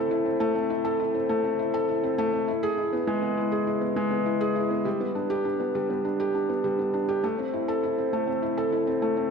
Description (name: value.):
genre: electronica.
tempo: 101 BPM.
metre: 4/4.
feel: straight.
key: unclear.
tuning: A4 = 443 Hz.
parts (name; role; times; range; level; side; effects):
felt-muted upright piano; solo; 0.0-9.3 s; G3 to A4; -24 LUFS; equal; none.
room: wet concert hall reverb, RT60 1.8 s.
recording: none.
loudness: -24 LUFS.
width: side -5 dB against mid.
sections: 0.0-9.3 A section.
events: none.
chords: none.